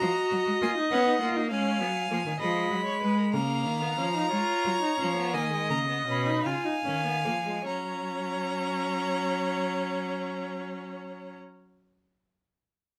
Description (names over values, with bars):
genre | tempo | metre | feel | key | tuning
classical, baroque-style fugue for string quartet | 47-68 BPM (dotted quarters) | 12/8 | straight | F# major | A4 = 440 Hz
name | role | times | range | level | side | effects
rich violin | melody | 0.0-11.4 s | F#5 to B5 | -34 LUFS | equal | none
rich violin | second line | 0.0-11.4 s | A#4 to E#5 | -36 LUFS | equal | none
rich viola | accompaniment | 0.0-11.4 s | G#3 to F#4 | -34 LUFS | equal | none
rich cello | bass | 0.0-11.4 s | B2 to B3 | -34 LUFS | equal | none
room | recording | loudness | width
light reverb | none | -28 LUFS | mono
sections
0.0-7.7 A section; 7.7-12.7 B section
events
slowing down 0.9-7.7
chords
0.0 D#m; 3.3 C#7; 7.7 F#